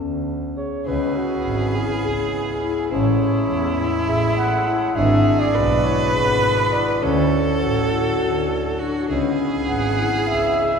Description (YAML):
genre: contemporary instrumental, chamber music in an uneven meter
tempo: 204 BPM (eighths)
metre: 7/8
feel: straight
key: unclear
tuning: A4 = 443 Hz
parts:
  - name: breathy flugelhorn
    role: melody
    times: 0.0-10.8 s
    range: F#4 to F#5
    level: -24 LUFS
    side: right 1 dB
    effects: none
  - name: marimba with soft mallets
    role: arpeggios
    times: 0.0-10.6 s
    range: C#4 to G#4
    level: -23 LUFS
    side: left 6 dB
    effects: none
  - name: rich double bass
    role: bass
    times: 0.0-10.8 s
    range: G#1 to E2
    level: -24 LUFS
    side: right 3 dB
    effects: none
  - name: clear viola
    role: second line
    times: 0.9-10.8 s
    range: E4 to B4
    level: -24 LUFS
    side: right 2 dB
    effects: none
  - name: hand-pumped harmonium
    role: sustained chords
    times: 0.9-10.8 s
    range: C#3 to F#4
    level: -31 LUFS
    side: equal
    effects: none
room: wet concert hall reverb, RT60 2.2 s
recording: heard from further back in the room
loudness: -18 LUFS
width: side -6 dB against mid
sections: 0.9-10.8 A section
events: none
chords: 0.0 A/D; 0.9 C#m7; 2.9 Amaj7; 5.0 E7/G#; 7.0 Dmaj7; 9.1 C#m7